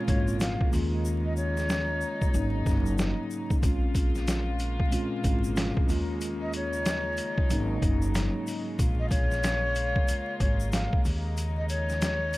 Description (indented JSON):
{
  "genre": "hip hop, boom-bap hip-hop",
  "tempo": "93 BPM",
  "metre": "4/4",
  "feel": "swing 62% on 16ths",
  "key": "Bb minor",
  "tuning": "A4 = 444 Hz",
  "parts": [
    { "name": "breathy jazz flute", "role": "melody", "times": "0.0-2.5, 6.4-12.4 s", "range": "Db5 to F5", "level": "-32 LUFS", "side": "left 2 dB", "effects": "high-pass filter, low-pass filter, tape echo" },
    { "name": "mellow tine electric piano", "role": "accompaniment", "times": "0.0-8.8 s", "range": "Ab2 to F4", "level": "-32 LUFS", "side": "equal", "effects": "medium stereo tremolo, high-pass filter, low-pass filter" },
    { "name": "warm studio string section", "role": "sustained chords", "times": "0.0-12.4 s", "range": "Db3 to F4", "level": "-37 LUFS", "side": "left 1 dB", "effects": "high-pass filter, low-pass filter" },
    { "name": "upright bass", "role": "bass", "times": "0.1-12.3 s", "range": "Gb1 to Eb2", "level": "-30 LUFS", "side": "equal", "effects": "none" },
    { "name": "trip hop sampler-style drum kit", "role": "drums", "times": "0.1-12.4 s", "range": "hi-hat, kick drum, snare drum", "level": "-27 LUFS", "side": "equal", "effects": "none" },
    { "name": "egg shaker", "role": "percussion", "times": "0.1-12.4 s", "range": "none", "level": "-46 LUFS", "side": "left 5 dB", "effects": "none" }
  ],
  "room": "little or no reverb",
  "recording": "vinyl crackle",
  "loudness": "-25 LUFS",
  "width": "side -18 dB against mid",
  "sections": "0.0-12.4 A section",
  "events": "hi-hats muted 1.0-3.6",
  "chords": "0.0 Bbm7; 0.7 Eb7sus4; 2.3 Ab7sus4; 3.6 Bbm7; 5.9 Eb7sus4; 7.5 Ab7sus4; 8.8 Bbm7; 11.0 Eb7sus4"
}